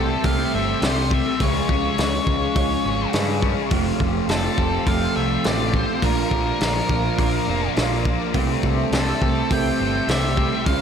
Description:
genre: rock, shoegaze and dream pop.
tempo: 104 BPM.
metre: 4/4.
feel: straight.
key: unclear.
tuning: A4 = 442 Hz.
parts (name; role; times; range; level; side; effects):
octave-fuzz lead guitar; melody; 0.0-10.8 s; A4 to G5; -27 LUFS; left 1 dB; distortion, tape echo.
sweeping resonant pad; sustained chords; 0.0-10.8 s; Ab4 to D6; -31 LUFS; equal; chorus.
electric guitar through a small old amp; riff; 0.0-10.8 s; Bb2 to G4; -26 LUFS; right 13 dB; reverse reverb.
fuzz guitar; riff; 0.0-10.8 s; F2 to Db4; -25 LUFS; left 12 dB; distortion, lush chorus.
growling picked electric bass; bass; 0.0-10.8 s; F1 to G2; -26 LUFS; equal; overdrive.
loose indie drum kit; drums; 0.2-10.8 s; hi-hat, kick drum, snare drum; -24 LUFS; equal; none.
room: light reverb, small room ambience.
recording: none.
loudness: -18 LUFS.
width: side -7 dB against mid.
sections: 0.0-10.8 A section.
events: none.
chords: 0.0 C6; 1.4 Db; 3.7 Fadd9; 6.0 Bb; 8.3 C6.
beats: 0.25 0.82 | 1.40 1.98 2.56 3.14 | 3.71 4.29 4.87 5.45 | 6.03 6.61 7.19 7.77 | 8.35 8.93 9.51 10.09 | 10.66.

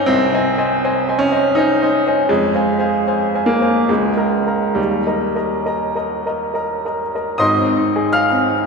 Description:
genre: classical, romantic character piece for solo piano.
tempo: 66-85 BPM.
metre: 3/4.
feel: rubato.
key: Ab major.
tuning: A4 = 439 Hz.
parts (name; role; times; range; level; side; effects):
clear baby grand piano; solo; 0.0-8.7 s; Ab1 to F6; -15 LUFS; equal; none.
room: wet church reverb, RT60 2.6 s.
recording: none.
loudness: -15 LUFS.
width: side -4 dB against mid.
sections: 0.0-7.4 A section; 7.4-8.7 B section.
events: none.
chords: 0.1 Ab/C; 2.3 Fm; 3.9 Bbm7/Db; 4.8 Eb; 7.4 Ab.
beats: | 0.07 0.82 1.55 | 2.29 3.05 3.88 | 4.77 5.67 6.57 | 7.42 8.12.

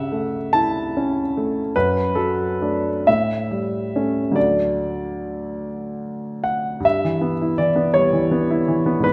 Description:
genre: classical, romantic character piece for solo piano.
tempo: 43-55 BPM (dotted quarters).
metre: 6/8.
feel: rubato.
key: unclear.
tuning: A4 = 438 Hz.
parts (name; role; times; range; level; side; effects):
warm concert grand piano; solo; 0.0-9.1 s; D2 to A5; -21 LUFS; equal; none.
room: moderate concert hall reverb, RT60 2.0 s.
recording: none.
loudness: -21 LUFS.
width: mono.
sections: 0.0-6.8 A section; 6.8-9.1 B section.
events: none.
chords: 0.0 A7/G; 1.7 D/F#; 3.1 A7; 4.4 D; 6.8 Em/G.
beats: 0.54 | 1.75 3.07 | 4.36 5.61 | 6.84 7.94 | 9.04.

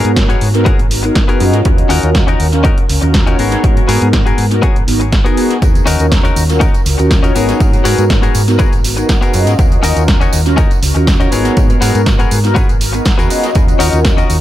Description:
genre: filtered disco house.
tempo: 121 BPM.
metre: 4/4.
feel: straight.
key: unclear.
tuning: A4 = 440 Hz.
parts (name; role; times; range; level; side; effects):
mellow synth brass; accompaniment; 0.0-14.1 s; Cb4 to Eb5; -17 LUFS; equal; chorus, phaser, sidechain pumping, dub echo.
direct-recorded clean electric guitar; riff; 0.0-14.4 s; Cb4 to Db5; -18 LUFS; left 4 dB; vintage 12-bit sampler grit, sidechain pumping, dub echo.
hollow-body short-scale fingered electric bass; bass; 0.0-14.4 s; Ab1 to Ab2; -15 LUFS; equal; sidechain pumping.
punchy analog drum machine; drums; 0.0-14.4 s; hi-hat, snare drum; -20 LUFS; right 1 dB; overdrive, sidechain pumping on hats, dub echo.
electronic kick drum; drums; 0.2-14.2 s; none; -12 LUFS; equal; none.
tambourine; percussion; 5.6-14.4 s; none; -28 LUFS; right 7 dB; sidechain pumping on perc, dub echo.
room: digital ambience.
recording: echo-heavy mix.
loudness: -9 LUFS.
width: side -13 dB against mid.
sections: 0.0-14.4 A section.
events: none.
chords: 0.0 Abm9; 1.7 Ebm7; 3.4 Abm9; 5.6 Ebm7; 7.4 Abm9; 9.6 Ebm7; 11.3 Abm9; 13.6 Ebm7.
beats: 0.17 0.66 1.16 | 1.65 2.15 2.65 3.14 | 3.64 4.13 4.63 5.12 | 5.62 6.12 6.61 7.11 | 7.60 8.10 8.60 9.09 | 9.59 10.08 10.58 11.07 | 11.57 12.07 12.56 13.06 | 13.55 14.05.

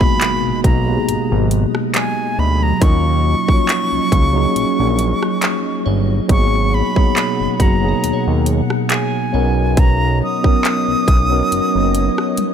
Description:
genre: contemporary R&B.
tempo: 69 BPM.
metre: 4/4.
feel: swing 54% on 16ths.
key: G# dorian.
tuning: A4 = 440 Hz.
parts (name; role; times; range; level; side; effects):
silver concert flute; melody; 0.0-12.5 s; G#5 to D#6; -21 LUFS; right 1 dB; ping-pong delay.
tine electric piano; accompaniment; 0.0-12.5 s; E#3 to A#4; -20 LUFS; equal; medium stereo tremolo.
glassy FM pad; sustained chords; 0.0-12.5 s; B2 to F#5; -23 LUFS; equal; ensemble chorus, built-in reverb, sidechain pumping.
fat analog bass; bass; 0.0-12.1 s; F#1 to D#2; -18 LUFS; equal; none.
trap drum kit; drums; 0.0-12.5 s; handclaps, hi-hat, kick drum, rim click, toms; -17 LUFS; equal; none.
impact; sound effects; 0.0-2.8 s; none; -32 LUFS; equal; none.
glassy synth bell; texture; 0.0-12.5 s; F#4 to G#5; -33 LUFS; right 3 dB; chorus, tremolo, ping-pong delay.
room: digital ambience.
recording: none.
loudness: -14 LUFS.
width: side -8 dB against mid.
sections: 0.0-12.5 A section.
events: impact 0.0-2.8; drum fill 12.4.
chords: 0.0 C#9sus4 (rootless); 2.8 D#m7; 6.3 G#m9; 9.3 Bmaj9.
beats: 0.21 1.08 1.95 | 2.82 3.69 4.55 5.42 | 6.29 7.16 8.03 8.90 | 9.77 10.64 11.51 12.38.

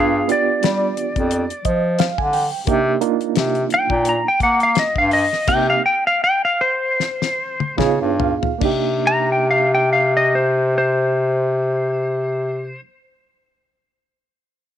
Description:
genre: straight-eighth soul blues.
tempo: 70-88 BPM.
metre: 4/4.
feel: swing 56% on 16ths.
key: C minor.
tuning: A4 = 439 Hz.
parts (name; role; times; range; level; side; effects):
clean lap steel guitar; melody; 0.0-12.8 s; Ab4 to Bb5; -18 LUFS; left 1 dB; none.
reed electric piano; accompaniment; 0.0-12.8 s; Bb3 to Ab5; -23 LUFS; right 13 dB; fast tremolo.
clear bass clarinet; bass; 0.0-12.8 s; F2 to Bb3; -19 LUFS; left 1 dB; none.
damped 70s drum kit; drums; 0.3-8.8 s; crash cymbal, hi-hat, kick drum, snare drum, toms; -23 LUFS; left 4 dB; none.
room: studio ambience.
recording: 1960s-style stereo.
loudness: -16 LUFS.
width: side -10 dB against mid.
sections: 0.0-8.6 A section; 8.6-12.0 B section.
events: reed electric piano fill 1.3-2.7, 7.4-8.6; slowing down 2.7-8.6; drum fill 7.0-8.6.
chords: 0.0 G7b9; 2.7 Cm7; 7.8 Db7; 8.6 Cm7.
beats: 0.63 1.31 2.00 | 2.68 3.36 4.05 4.76 | 5.48 6.22 6.99 7.78 | 8.62 9.47 10.32 11.17.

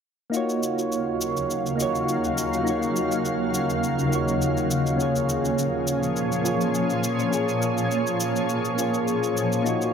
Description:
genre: sunset chillout.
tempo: 103 BPM.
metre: 4/4.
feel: swing 53% on 16ths.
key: Eb minor.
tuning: A4 = 441 Hz.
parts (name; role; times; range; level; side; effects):
soft electric-piano-like synth keys; accompaniment; 0.3-9.9 s; Bb3 to Db5; -24 LUFS; moving between left 3 dB and right 5 dB; chorus, phaser, auto-pan, tape echo.
shimmering ambient pad; sustained chords; 1.0-9.9 s; Eb2 to F5; -26 LUFS; left 1 dB; chorus, built-in reverb.
cabasa; drums; 0.3-9.9 s; none; -33 LUFS; left 1 dB; none.
room: wet spring reverb, RT60 1.7 s, digital ambience.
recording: echo-heavy mix.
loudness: -22 LUFS.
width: side -7 dB against mid.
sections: 0.3-9.9 A section.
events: none.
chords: 0.3 Ebm9; 5.0 Bbm7.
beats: | 0.33 0.92 1.50 2.08 | 2.66 3.25 3.83 4.41 | 4.99 5.58 6.16 6.74 | 7.32 7.91 8.49 9.07 | 9.65.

